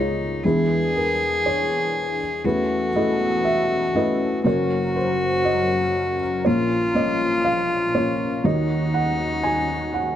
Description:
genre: acoustic folk-pop ballad.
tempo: 60 BPM.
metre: 4/4.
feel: straight.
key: unclear.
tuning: A4 = 440 Hz.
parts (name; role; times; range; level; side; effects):
felt-muted upright piano; melody; 0.0-10.2 s; Gb1 to Ab5; -22 LUFS; equal; none.
warm cello; second line; 0.0-10.2 s; Eb4 to G#4; -23 LUFS; left 1 dB; none.
warm analog pad; sustained chords; 0.0-10.2 s; Db2 to Bb4; -30 LUFS; equal; chorus.
room: light reverb.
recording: dark, warm production.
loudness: -19 LUFS.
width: side -10 dB against mid.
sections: 0.0-10.2 A section.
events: none.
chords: 0.4 E7; 2.4 Aadd9/E; 4.4 Gb; 6.5 Bbm; 8.5 Ebm7.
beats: 0.44 1.44 | 2.44 3.45 4.45 5.45 | 6.45 7.45 8.45 9.45.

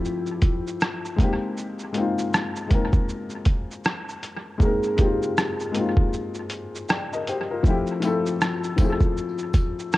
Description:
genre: lo-fi hip hop.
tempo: 79 BPM.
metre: 4/4.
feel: swing 61% on 16ths.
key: unclear.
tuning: A4 = 442 Hz.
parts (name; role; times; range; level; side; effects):
felt-muted upright piano; accompaniment; 0.0-10.0 s; F3 to G5; -26 LUFS; left 3 dB; none.
lo-fi sampler-style drum kit; drums; 0.1-10.0 s; hi-hat, kick drum, rim click, shaker; -22 LUFS; equal; overdrive, analog delay.
kalimba; melody; 4.6-6.5 s; G4 to Ab4; -30 LUFS; right 2 dB; analog delay.
tambourine; percussion; 8.0-9.8 s; none; -48 LUFS; right 4 dB; none.
room: light reverb, studio reverb.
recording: echo-heavy mix, cassette tape.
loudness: -21 LUFS.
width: side -17 dB against mid.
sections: 0.0-10.0 A section.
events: break 0.0-4.6, 6.1-7.6.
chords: 0.0 Fmaj9; 1.2 Abmaj9; 7.6 Fmaj9.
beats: 0.04 0.80 | 1.56 2.32 3.08 3.84 | 4.60 5.36 6.12 6.88 | 7.64 8.40 9.16 9.92.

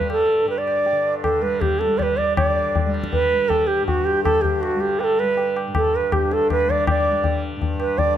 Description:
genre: indian classical, Hindustani.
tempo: 160 BPM.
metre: 3/4.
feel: straight.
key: G raga hamsadhwani.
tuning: A4 = 440 Hz.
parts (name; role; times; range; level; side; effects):
bright reedy bansuri; melody; 0.0-8.2 s; F#4 to D5; -19 LUFS; right 2 dB; none.
tanpura; drone; 0.0-8.2 s; G2 to G3; -28 LUFS; equal; none.
tabla; percussion; 0.0-8.1 s; none; -24 LUFS; left 3 dB; none.
room: light reverb.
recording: none.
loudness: -18 LUFS.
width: side -10 dB against mid.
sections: 0.0-2.4 A section; 2.4-8.2 B section.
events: speeding up 0.0-8.2.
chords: none.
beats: | 0.10 0.48 0.86 | 1.24 1.62 2.00 | 2.38 2.75 3.13 | 3.51 3.88 4.26 | 4.63 5.01 5.38 | 5.75 6.12 6.50 | 6.87 7.24 7.61 | 7.98.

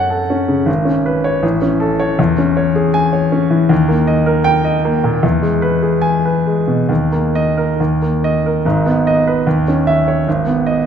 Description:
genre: classical, romantic character piece for solo piano.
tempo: 67-81 BPM.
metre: 2/4.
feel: rubato.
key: G# minor.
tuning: A4 = 440 Hz.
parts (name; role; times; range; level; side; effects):
clear grand piano; solo; 0.0-10.9 s; G#1 to G#5; -12 LUFS; equal; none.
room: moderate concert hall reverb, RT60 2.0 s.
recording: minimal, uncompressed stereo recording.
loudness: -12 LUFS.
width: side -8 dB against mid.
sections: 0.0-8.6 A section; 8.6-10.9 B section.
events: none.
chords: 0.0 F#m; 0.7 C#5/G#; 1.4 A; 2.2 C#m/E; 3.7 D#; 5.2 E; 6.9 D#5; 8.6 G#m; 9.5 C#madd9/D#; 10.3 G#m.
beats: | 0.68 1.43 | 2.18 2.94 | 3.71 4.46 | 5.23 6.04 | 6.90 7.79 | 8.65 9.45 | 10.26.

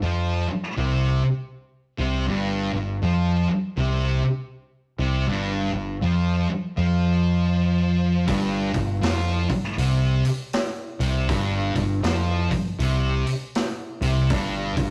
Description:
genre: blues rock power trio and southern rock.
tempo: 80 BPM.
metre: 4/4.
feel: swing 62% on 8ths.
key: unclear.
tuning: A4 = 440 Hz.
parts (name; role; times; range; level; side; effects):
thick fuzz guitar; riff; 0.0-14.9 s; G2 to F3; -25 LUFS; equal; distortion.
growling fingered electric bass; bass; 0.0-14.9 s; G1 to F2; -28 LUFS; equal; overdrive.
vintage drum kit; drums; 8.3-14.9 s; hi-hat, kick drum, snare drum; -30 LUFS; equal; none.
room: moderate stone room reverb, RT60 1.0 s.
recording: rough rehearsal-room recording, tube saturation.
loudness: -23 LUFS.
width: mono.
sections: 0.0-14.9 A section.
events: none.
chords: 0.0 G7sus4.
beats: 0.02 0.77 1.52 | 2.27 3.02 3.77 4.52 | 5.27 6.03 6.78 7.53 | 8.28 9.03 9.79 10.54 | 11.29 12.04 12.80 13.55 | 14.30.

